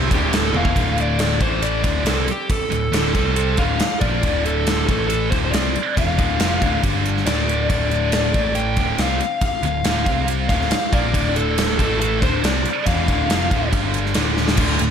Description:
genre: hard rock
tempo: 139 BPM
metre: 4/4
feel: straight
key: D minor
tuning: A4 = 441 Hz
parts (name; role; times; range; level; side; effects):
- crunchy overdriven guitar; riff; 0.0-0.8, 14.6-14.9 s; D2 to C4; -28 LUFS; right 1 dB; slapback echo
- scooped high-gain guitar; riff; 0.0-14.9 s; D2 to C4; -25 LUFS; right 10 dB; distortion
- sludgy distorted guitar; riff; 0.0-14.9 s; D2 to C4; -26 LUFS; left 9 dB; overdrive
- overdriven picked electric bass; bass; 0.0-14.9 s; D1 to C2; -24 LUFS; equal; none
- dark smooth lead guitar; melody; 0.1-13.7 s; G4 to G5; -24 LUFS; left 1 dB; overdrive, analog delay
- gated 80s drum kit; drums; 0.1-14.9 s; crash cymbal, kick drum, ride cymbal, snare drum, toms; -22 LUFS; equal; none
room: moderate lush hall reverb, RT60 1.8 s, small room reverb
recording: big arena sound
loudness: -17 LUFS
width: side -8 dB against mid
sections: 0.8-14.6 A section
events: drum fill 0.5, 14.4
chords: 0.0 D5; 1.4 A5; 1.8 D5; 3.2 C5; 3.6 Dm; 4.9 A5; 5.3 Dm; 6.8 G5; 7.3 D5; 8.3 A5; 8.8 Dm; 10.1 C5; 10.5 Dm; 11.8 A5; 12.2 Dm; 13.7 G5; 14.2 D5

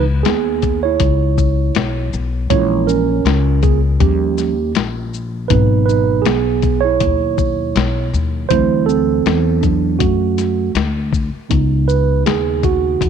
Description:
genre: hip hop, jazz-hop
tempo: 80 BPM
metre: 4/4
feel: swing 58% on 16ths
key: C# minor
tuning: A4 = 438 Hz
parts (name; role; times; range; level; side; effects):
- mellow tine electric piano; accompaniment; 0.0-13.1 s; B2 to C#5; -17 LUFS; moving between right 5 dB and right 12 dB; auto-pan
- upright bass; bass; 0.0-13.1 s; G#1 to F#2; -17 LUFS; left 2 dB; none
- lo-fi sampler-style drum kit; drums; 0.3-13.1 s; hi-hat, kick drum, shaker, snare drum; -19 LUFS; left 7 dB; none
room: light reverb, digital ambience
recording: 1960s-style stereo with parts hard left and right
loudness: -13 LUFS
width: side -8 dB against mid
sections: 0.0-11.5 A section; 11.5-13.1 B section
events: tine electric piano solo 0.0-11.5, 11.5-13.1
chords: 0.0 C#m7; 2.5 A#m7b5; 4.0 D#7; 5.5 G#m7; 8.5 D9; 11.5 C#7(no3)

